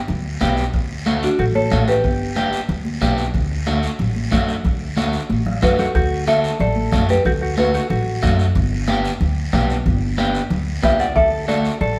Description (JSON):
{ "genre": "latin, cumbia", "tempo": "184 BPM", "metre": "4/4", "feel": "straight", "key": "D major", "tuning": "A4 = 440 Hz", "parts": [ { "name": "upright bass", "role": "bass", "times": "0.1-12.0 s", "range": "G1 to F#2", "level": "-24 LUFS", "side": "equal", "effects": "none" }, { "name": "congas", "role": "percussion", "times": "0.1-12.0 s", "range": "none", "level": "-27 LUFS", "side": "equal", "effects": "none" }, { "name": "guiro", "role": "percussion", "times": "0.1-12.0 s", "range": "none", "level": "-37 LUFS", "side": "equal", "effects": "none" }, { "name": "electric guitar at the edge of break-up", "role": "accompaniment", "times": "0.4-11.7 s", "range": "A3 to G4", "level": "-28 LUFS", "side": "equal", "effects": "none" }, { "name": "bombo", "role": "percussion", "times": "0.4-11.6 s", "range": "none", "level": "-26 LUFS", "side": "equal", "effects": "none" }, { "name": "folk marimba with medium mallets", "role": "melody", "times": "1.2-2.5, 5.6-8.4, 10.8-12.0 s", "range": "F#4 to F#5", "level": "-22 LUFS", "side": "equal", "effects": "none" }, { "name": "mellow electric guitar", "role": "second line", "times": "1.2-2.5, 5.6-8.4, 10.8-12.0 s", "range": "D4 to D5", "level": "-27 LUFS", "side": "equal", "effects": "none" } ], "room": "moderate stone room reverb, RT60 1.2 s", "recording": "band playing live in one room", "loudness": "-19 LUFS", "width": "mono", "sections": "0.0-6.0 A section; 6.0-12.0 B section", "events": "drum fill 5.0-6.0", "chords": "0.0 G; 0.7 D; 2.0 G; 3.3 D; 8.6 G; 11.2 D" }